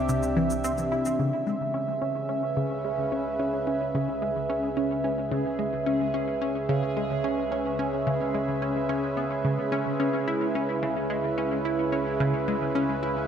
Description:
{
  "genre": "ambient, sequencer-driven space music",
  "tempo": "109 BPM",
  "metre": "4/4",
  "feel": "straight",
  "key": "unclear",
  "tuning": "A4 = 440 Hz",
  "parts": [
    { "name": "sweeping resonant pad", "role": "sustained chords", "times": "0.0-13.3 s", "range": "C3 to E5", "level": "-27 LUFS", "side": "right 1 dB", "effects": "chorus" },
    { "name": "fat analog bass", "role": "bass", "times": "0.0-13.3 s", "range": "C2 to C#2", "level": "-43 LUFS", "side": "equal", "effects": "none" },
    { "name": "tight sequenced synth", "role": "riff", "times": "0.1-13.2 s", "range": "C3 to E4", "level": "-29 LUFS", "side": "equal", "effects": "chorus, phaser, analog delay" },
    { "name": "cabasa", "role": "percussion", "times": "0.1-1.2 s", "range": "none", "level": "-43 LUFS", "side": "left 1 dB", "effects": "overdrive, analog delay" },
    { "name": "bubbling stepped-filter texture", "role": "texture", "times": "1.4-13.3 s", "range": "G#3 to G#4", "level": "-36 LUFS", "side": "right 1 dB", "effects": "chorus, built-in reverb" }
  ],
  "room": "wet cathedral reverb, RT60 4.9 s",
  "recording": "in a vast, echoing space",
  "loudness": "-25 LUFS",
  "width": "side -8 dB against mid",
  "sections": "0.0-1.2 A section; 1.2-13.3 B section",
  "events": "filter sweep on synth arpeggio sound 0.0-1.2; fade-in on analog synth bass 1.2-13.3",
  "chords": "0.0 Cadd9; 1.2 C#m7"
}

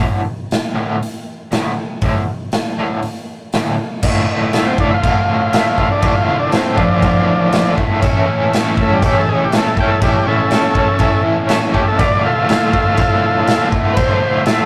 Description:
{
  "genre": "garage rock duo or trio",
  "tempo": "120 BPM",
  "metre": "4/4",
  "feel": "straight",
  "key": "D harmonic minor from 4.0 s",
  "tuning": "A4 = 440 Hz",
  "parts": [
    { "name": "crunchy overdriven guitar", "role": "riff", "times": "0.0-14.7 s", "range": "D2 to A4", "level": "-19 LUFS", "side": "equal", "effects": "tremolo" },
    { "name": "raw garage drum kit", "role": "drums", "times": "0.0-14.6 s", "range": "crash cymbal, hi-hat, kick drum, snare drum", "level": "-20 LUFS", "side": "equal", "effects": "none" },
    { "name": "overdriven combo organ", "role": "melody", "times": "4.5-14.7 s", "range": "F3 to G5", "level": "-19 LUFS", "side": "equal", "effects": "none" }
  ],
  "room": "wet booth ambience, RT60 0.2 s",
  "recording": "rough rehearsal-room recording, tube saturation",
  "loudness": "-15 LUFS",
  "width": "mono",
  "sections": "0.0-4.0 A section; 4.0-14.7 B section",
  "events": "transistor combo organ solo 4.0-14.7",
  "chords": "0.0 D5; 4.0 Dm; 8.0 A; 12.0 Dm"
}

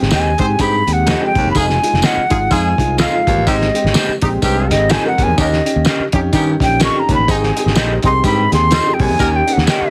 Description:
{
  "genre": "uptempo 1960s-style soul",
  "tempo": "126 BPM",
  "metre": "4/4",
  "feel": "swing 58% on 8ths",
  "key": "Ab major",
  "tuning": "A4 = 441 Hz",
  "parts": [
    { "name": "warm upright piano", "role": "accompaniment", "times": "0.0-9.8 s", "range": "Ab3 to Bb4", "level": "-23 LUFS", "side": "equal", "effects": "none" },
    { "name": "modern bright fingered electric bass", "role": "bass", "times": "0.0-9.8 s", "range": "F1 to Eb3", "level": "-21 LUFS", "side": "equal", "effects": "none" },
    { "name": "cloth-damped thuddy drum kit", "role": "drums", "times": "0.0-9.8 s", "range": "hi-hat, kick drum, snare drum", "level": "-21 LUFS", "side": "equal", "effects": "none" },
    { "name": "concert flute", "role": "melody", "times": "0.1-9.9 s", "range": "Eb5 to Db6", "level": "-19 LUFS", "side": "equal", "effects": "none" },
    { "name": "electric guitar through a small old amp", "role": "stabs", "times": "0.1-9.8 s", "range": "C4 to Eb5", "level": "-22 LUFS", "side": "equal", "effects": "none" },
    { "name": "tambourine", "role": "percussion", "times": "0.1-9.8 s", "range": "none", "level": "-29 LUFS", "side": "equal", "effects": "none" },
    { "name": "warm horn section", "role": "second line", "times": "0.4-9.3 s", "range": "Ab3 to C5", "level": "-24 LUFS", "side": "equal", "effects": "none" },
    { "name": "warm baritone saxophone", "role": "riff", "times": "0.6-9.4 s", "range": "Eb2 to Ab2", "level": "-24 LUFS", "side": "equal", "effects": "none" },
    { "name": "percussive tonewheel organ", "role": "sustained chords", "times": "7.3-9.9 s", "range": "Eb3 to Eb4", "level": "-31 LUFS", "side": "equal", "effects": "none" }
  ],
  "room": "little or no reverb",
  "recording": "heavily compressed radio sound, multiband compression",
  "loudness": "-14 LUFS",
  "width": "mono",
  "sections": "0.0-9.9 A section",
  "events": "flute solo 0.0-9.9",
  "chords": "0.0 Abmaj7; 1.6 Fm7; 3.5 Abmaj7; 5.4 Eb7; 7.3 Abmaj7; 9.2 Eb7"
}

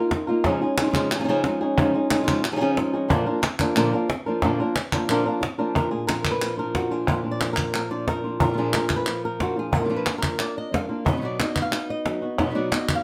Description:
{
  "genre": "flamenco",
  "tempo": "181 BPM",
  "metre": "4/4",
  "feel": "straight",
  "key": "Bb phrygian dominant",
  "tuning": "A4 = 437 Hz",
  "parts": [
    { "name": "flamenco guitar", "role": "melody", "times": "0.0-13.0 s", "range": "Bb2 to F5", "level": "-27 LUFS", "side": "equal", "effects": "none" },
    { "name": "flamenco guitar", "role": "stabs", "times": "0.0-13.0 s", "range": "Bb2 to F#4", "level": "-31 LUFS", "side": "equal", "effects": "none" },
    { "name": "cajon", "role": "percussion", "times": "0.1-13.0 s", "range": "none", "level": "-29 LUFS", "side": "equal", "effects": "none" },
    { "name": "palmas hand claps", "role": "percussion", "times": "0.4-13.0 s", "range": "none", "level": "-30 LUFS", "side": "equal", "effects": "none" }
  ],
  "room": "moderate studio reverb, RT60 0.5 s",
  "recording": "none",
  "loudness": "-24 LUFS",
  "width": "mono",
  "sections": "0.0-5.8 A section; 5.8-13.0 B section",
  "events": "none",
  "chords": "0.4 Dbadd9; 3.1 Bb; 11.1 B"
}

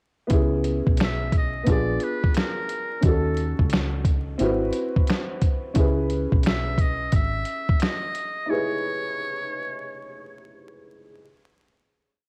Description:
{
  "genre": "lo-fi hip hop",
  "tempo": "88 BPM",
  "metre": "4/4",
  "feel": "swing 66% on 16ths",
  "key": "C# minor",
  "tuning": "A4 = 440 Hz",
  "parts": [
    { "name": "dark upright piano", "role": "accompaniment", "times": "0.3-11.2 s", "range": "B3 to B4", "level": "-30 LUFS", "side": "equal", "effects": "low-pass filter" },
    { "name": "deep dub fingered electric bass", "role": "bass", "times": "0.3-7.4 s", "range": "G#1 to D#2", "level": "-29 LUFS", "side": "equal", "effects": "none" },
    { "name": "dusty soul sampler-style drum kit", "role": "drums", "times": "0.3-8.4 s", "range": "finger snaps, hi-hat, kick drum, snare drum", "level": "-24 LUFS", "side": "equal", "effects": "vintage 12-bit sampler grit, cassette tape" },
    { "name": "trumpet with metal mute", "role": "melody", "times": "1.0-10.5 s", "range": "A4 to E5", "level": "-32 LUFS", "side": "equal", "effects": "low-pass filter" }
  ],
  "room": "light reverb, digital ambience",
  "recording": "home recording on cassette, vinyl crackle",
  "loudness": "-24 LUFS",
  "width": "mono",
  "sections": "0.3-11.2 A section",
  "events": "none",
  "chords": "0.3 C#m7; 1.7 A#7b9; 3.0 D#m7b5; 4.4 G#7alt; 5.8 C#m9"
}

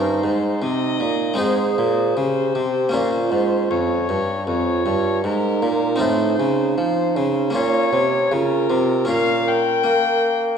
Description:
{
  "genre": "classical, baroque-style sonata movement with continuo",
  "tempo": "78 BPM",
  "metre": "4/4",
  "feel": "straight",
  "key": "unclear",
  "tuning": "A4 = 436 Hz",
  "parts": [
    { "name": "dark violin", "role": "melody", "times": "0.0-10.6 s", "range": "Bb4 to G5", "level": "-24 LUFS", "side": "left 7 dB", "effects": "none" },
    { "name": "mellow hollow baroque flute", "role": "second line", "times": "0.0-10.4 s", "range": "Eb4 to Db5", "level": "-23 LUFS", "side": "right 7 dB", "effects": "none" },
    { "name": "harpsichord", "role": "accompaniment", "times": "0.0-10.6 s", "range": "F2 to Bb4", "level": "-24 LUFS", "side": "left 2 dB", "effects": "none" },
    { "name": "warm bassoon", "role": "bass", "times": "0.0-10.6 s", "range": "F2 to Bb3", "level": "-22 LUFS", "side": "equal", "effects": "none" }
  ],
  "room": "wet recital hall reverb, RT60 1.4 s",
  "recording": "dark, warm production",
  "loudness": "-17 LUFS",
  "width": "side -7 dB against mid",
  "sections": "0.0-10.6 A section",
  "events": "none",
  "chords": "0.0 Eb7/G; 1.4 Ab; 2.9 Bbm; 6.0 F7/A; 7.5 Bbm; 9.1 Gm7b5/Bb"
}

